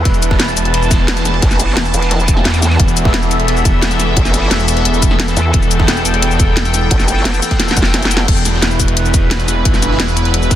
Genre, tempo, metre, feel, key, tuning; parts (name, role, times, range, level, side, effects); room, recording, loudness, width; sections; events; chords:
dark technical drum and bass; 175 BPM; 4/4; straight; E minor; A4 = 439 Hz
sweeping resonant pad; sustained chords; 0.0-10.6 s; B2 to A5; -18 LUFS; equal; chorus, vintage 12-bit sampler grit, sidechain pumping
vowel-sweep wobble bass; bass; 0.0-8.3 s; E1 to E2; -15 LUFS; equal; chorus
wide detuned saw bass; bass; 0.1-10.6 s; E1 to G1; -16 LUFS; equal; chorus, overdrive, sidechain pumping
crunchy breakbeat drum kit; drums; 0.1-10.6 s; ride cymbal, snare drum; -26 LUFS; equal
drum and bass drum kit; drums; 0.1-10.6 s; cabasa, crash cymbal, hi-hat, snare drum; -17 LUFS; left 1 dB
electronic kick drum; drums; 0.1-10.6 s; -15 LUFS; equal
digital ambience; dense, heavily limited modern master; -11 LUFS; side -12 dB against mid
0.0-8.3 A section; 8.3-10.6 A section
drop 0.0-8.3, 8.3-10.6; drum fill 7.6-8.3
0.0 E5